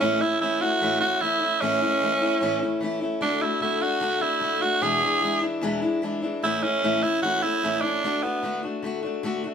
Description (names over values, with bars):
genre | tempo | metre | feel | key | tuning
rock | 149 BPM | 4/4 | straight | A major | A4 = 440 Hz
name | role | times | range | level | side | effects
raspy tenor saxophone | melody | 0.0-8.6 s | B3 to G#4 | -23 LUFS | right 2 dB | none
picked steel-string acoustic guitar | accompaniment | 0.0-9.5 s | E2 to F#4 | -26 LUFS | left 2 dB | none
room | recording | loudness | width
moderate studio reverb, RT60 0.8 s | band playing live in one room | -22 LUFS | side -7 dB against mid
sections
0.0-6.4 A section; 6.4-9.5 B section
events
none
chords
0.0 A; 3.2 D; 4.8 E7; 6.4 A; 8.0 D